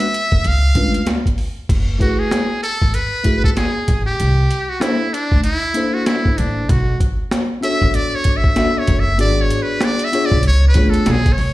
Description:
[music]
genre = hip hop, jazz-hop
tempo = 96 BPM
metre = 4/4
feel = swing 60% on 16ths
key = F# minor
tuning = A4 = 439 Hz
[part]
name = trumpet with metal mute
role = melody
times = 0.0-11.5 s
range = D4 to E#5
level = -20 LUFS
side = equal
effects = none
[part]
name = tine electric piano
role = accompaniment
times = 0.0-11.2 s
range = G#3 to E5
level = -21 LUFS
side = left 2 dB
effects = none
[part]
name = boom bap sampler-style drum kit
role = drums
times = 0.0-11.5 s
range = crash cymbal, hi-hat, kick drum, snare drum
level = -17 LUFS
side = equal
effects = none
[part]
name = upright bass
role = bass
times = 0.3-11.5 s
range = E#1 to D2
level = -17 LUFS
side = equal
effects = none
[sound]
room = light reverb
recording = played on a big sound system in a bare room, large studio reverb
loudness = -14 LUFS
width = side -16 dB against mid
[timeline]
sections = 0.0-1.7 A section; 1.7-11.5 B section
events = muted trumpet solo 1.7-11.5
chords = 0.4 C#7b9; 1.7 F#m11; 4.2 C13; 6.7 Bm9; 9.2 G#m7b5; 10.4 C#7b9

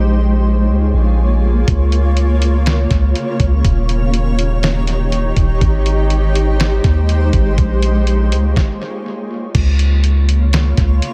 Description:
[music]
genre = hip hop, atmospheric cloud-rap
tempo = 122 BPM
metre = 4/4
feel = half-time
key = Db lydian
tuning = A4 = 440 Hz
[part]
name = shimmering ambient pad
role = sustained chords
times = 0.0-11.1 s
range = Db3 to Db5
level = -22 LUFS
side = equal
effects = chorus, built-in reverb, sidechain pumping
[part]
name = long sustained 808-style bass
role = bass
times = 0.0-11.0 s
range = Eb1 to Eb2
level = -16 LUFS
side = equal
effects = none
[part]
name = lo-fi sampler-style drum kit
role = drums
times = 1.7-11.1 s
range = crash cymbal, hi-hat, kick drum, snare drum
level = -20 LUFS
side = equal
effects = tape echo
[sound]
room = digital ambience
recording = echo-heavy mix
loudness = -15 LUFS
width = mono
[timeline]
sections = 0.0-9.5 A section; 9.5-11.1 B section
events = stop 8.6-9.5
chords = 0.0 Bbm7; 1.7 Db6; 3.6 Eb7; 5.6 Abmaj7; 7.6 Bbm7; 9.5 Db6

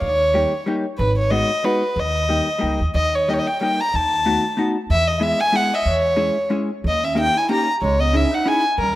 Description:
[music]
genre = musette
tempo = 186 BPM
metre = 3/4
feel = swing 55% on 8ths, rubato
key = unclear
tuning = A4 = 441 Hz
[part]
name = warm violin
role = melody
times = 0.0-9.0 s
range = A#4 to A#5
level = -19 LUFS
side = equal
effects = analog delay
[part]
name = upright bass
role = bass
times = 0.0-9.0 s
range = G#1 to E2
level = -23 LUFS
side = equal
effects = none
[part]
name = vintage hollow-body jazz guitar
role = accompaniment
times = 0.3-8.6 s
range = G3 to G#4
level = -24 LUFS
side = left 2 dB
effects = none
[part]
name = breathy clarinet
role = second line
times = 6.9-9.0 s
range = G3 to G4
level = -26 LUFS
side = right 4 dB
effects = none
[sound]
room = light reverb, small room ambience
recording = rough home demo mix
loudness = -17 LUFS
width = side -15 dB against mid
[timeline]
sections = 0.0-9.0 A section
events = none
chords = 0.0 D#; 1.0 G#m7; 2.0 D#; 3.9 B7/D#; 4.9 E; 5.9 C#m/E; 6.8 D#7; 7.8 C#madd9

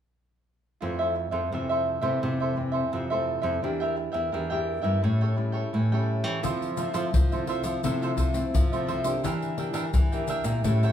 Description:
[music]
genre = samba and choro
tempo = 86 BPM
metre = 4/4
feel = straight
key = F major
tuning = A4 = 440 Hz
[part]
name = cavaquinho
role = accompaniment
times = 0.8-10.9 s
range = D4 to G5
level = -29 LUFS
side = right 2 dB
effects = none
[part]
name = nylon-string guitar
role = accompaniment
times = 0.8-10.9 s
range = F2 to G4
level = -32 LUFS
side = left 2 dB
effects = none
[part]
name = nylon-string guitar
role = bass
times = 0.8-10.9 s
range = E2 to F3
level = -29 LUFS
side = equal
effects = none
[part]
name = maracas, surdo and pandeiro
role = percussion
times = 6.4-10.9 s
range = none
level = -27 LUFS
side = left 1 dB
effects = none
[sound]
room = wet large studio reverb, RT60 0.9 s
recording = band playing live in one room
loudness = -24 LUFS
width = side -9 dB against mid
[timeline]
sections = 0.8-6.4 A section; 6.4-10.9 B section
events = none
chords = 0.8 Fmaj7; 3.6 Em7b5; 5.0 A7; 6.4 Fmaj7; 9.2 Em7b5

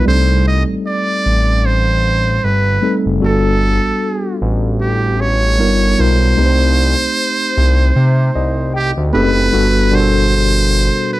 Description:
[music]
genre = R&B, neo-soul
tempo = 76 BPM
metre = 4/4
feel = swing 56% on 16ths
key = G major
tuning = A4 = 440 Hz
[part]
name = trumpet with metal mute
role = melody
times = 0.0-11.2 s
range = G4 to Eb5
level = -17 LUFS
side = right 2 dB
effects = none
[part]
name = tine electric piano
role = accompaniment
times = 0.0-11.2 s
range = B2 to B5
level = -17 LUFS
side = left 1 dB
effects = medium stereo tremolo
[part]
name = smooth synth bass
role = bass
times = 0.0-10.9 s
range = F#1 to C3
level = -14 LUFS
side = equal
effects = none
[sound]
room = light reverb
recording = none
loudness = -12 LUFS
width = side -16 dB against mid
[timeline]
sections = 0.0-9.5 A section; 9.5-11.2 B section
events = tine electric piano fill 7.9-9.5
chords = 0.0 Cm6; 3.2 Gmaj9; 5.6 G7alt; 6.4 Cm6; 9.5 Gmaj9

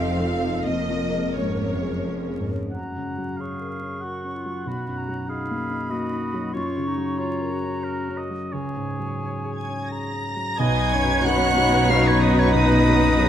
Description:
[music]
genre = cinematic, emotional film score for orchestra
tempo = 85-97 BPM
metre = 3/4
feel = rubato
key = F# major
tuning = A4 = 440 Hz
[part]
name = warm symphonic violin section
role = melody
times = 0.0-2.4, 9.6-13.3 s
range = C#5 to A#6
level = -29 LUFS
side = equal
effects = none
[part]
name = warm symphonic violin section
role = second line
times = 0.0-2.4, 10.6-13.3 s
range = D#4 to F5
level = -30 LUFS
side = equal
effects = none
[part]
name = dark baby grand piano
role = accompaniment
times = 0.0-13.3 s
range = B1 to Eb5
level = -26 LUFS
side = left 1 dB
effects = none
[part]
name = rich studio viola section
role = accompaniment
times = 0.0-2.5, 10.6-13.3 s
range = A#3 to D#5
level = -28 LUFS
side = right 2 dB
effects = none
[part]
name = rich studio cello section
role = bass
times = 0.0-2.7, 10.6-13.3 s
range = F2 to B2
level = -26 LUFS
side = right 1 dB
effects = none
[part]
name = rich symphonic double bass section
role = bass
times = 0.0-2.5, 10.6-13.3 s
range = F1 to B1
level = -26 LUFS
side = right 1 dB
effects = none
[part]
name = bright clarinet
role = second line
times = 2.7-13.3 s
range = D#4 to G#4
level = -31 LUFS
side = equal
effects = none
[part]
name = bright concert flute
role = second line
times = 2.7-13.3 s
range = C#5 to C#6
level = -28 LUFS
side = left 1 dB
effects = none
[part]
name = clear oboe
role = second line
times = 2.7-13.3 s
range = A#4 to F#5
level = -33 LUFS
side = right 1 dB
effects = none
[part]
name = warm French horn section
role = sustained chords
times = 10.6-13.3 s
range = B3 to D#4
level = -27 LUFS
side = left 3 dB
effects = none
[sound]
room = moderate scoring stage reverb, RT60 1.8 s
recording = vinyl crackle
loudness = -21 LUFS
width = side -10 dB against mid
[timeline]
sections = 0.0-2.7 A section; 2.7-10.6 B section; 10.6-13.3 C section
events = none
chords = 0.0 F7; 0.7 A#m7/E#; 2.7 F#maj7; 4.7 Bmaj7; 6.5 F#maj7; 8.5 C#sus4; 10.6 B

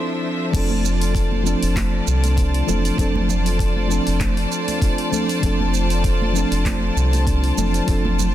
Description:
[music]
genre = sunset chillout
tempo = 98 BPM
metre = 4/4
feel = swing 54% on 16ths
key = F major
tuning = A4 = 440 Hz
[part]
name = mellow FM electric piano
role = accompaniment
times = 0.0-8.3 s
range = F3 to A4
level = -23 LUFS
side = equal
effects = chorus, auto-pan, tape echo
[part]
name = clear studio string section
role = sustained chords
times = 0.0-8.3 s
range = F3 to A5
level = -26 LUFS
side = equal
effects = none
[part]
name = round analog bass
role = bass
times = 0.5-8.3 s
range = F1 to C2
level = -20 LUFS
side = equal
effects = none
[part]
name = deep house drum kit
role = drums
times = 0.5-8.3 s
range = crash cymbal, handclaps, hi-hat, shaker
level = -30 LUFS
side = right 3 dB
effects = none
[part]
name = electronic kick drum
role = drums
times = 0.5-8.0 s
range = none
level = -21 LUFS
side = equal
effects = none
[part]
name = congas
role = percussion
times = 0.7-8.3 s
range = none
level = -30 LUFS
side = right 3 dB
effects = none
[sound]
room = little or no reverb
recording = dense, heavily limited modern master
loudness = -17 LUFS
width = side -12 dB against mid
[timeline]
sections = 0.5-8.3 A section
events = break 0.0-0.5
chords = 0.0 Dm9; 0.5 F6

